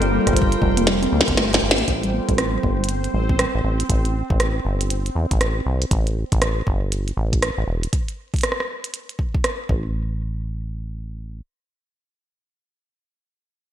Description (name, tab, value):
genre	IDM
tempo	119 BPM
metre	4/4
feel	swing 62% on 16ths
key	A minor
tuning	A4 = 438 Hz
part	warbly tape-like pad	sustained chords	0.0-1.9 s	G3 to C5	-25 LUFS	equal	chorus, built-in reverb
part	warbly dusty pluck	arpeggios	0.0-3.8 s	G3 to C4	-25 LUFS	left 1 dB	chorus, ping-pong delay
part	deep acid bass	bass	0.0-11.4 s	E1 to E2	-23 LUFS	equal	none
part	glitchy drum kit	drums	0.0-9.6 s	hi-hat, rim click, snare drum	-22 LUFS	right 1 dB	gated reverb
part	bubbling stepped-filter texture	texture	0.0-5.9 s	G3 to G5	-30 LUFS	right 2 dB	chorus, built-in reverb
part	electronic kick drum	drums	0.3-9.8 s	none	-22 LUFS	equal	none
room	moderate lush hall reverb, RT60 1.6 s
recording	bright 1980s-style digital production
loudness	-19 LUFS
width	side -10 dB against mid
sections	0.0-1.9 A section; 1.9-9.9 B section; 9.9-13.7 C section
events	drum fill 0.9-1.9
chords	0.0 Gm11; 1.9 Am7; 7.7 N.C.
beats	0.36 0.87 1.37 | 1.88 2.38 2.89 3.39 | 3.89 4.40 4.90 5.41 | 5.91 6.42 6.92 7.42 | 7.93 8.43 8.94 9.44 | 9.94 10.45 10.95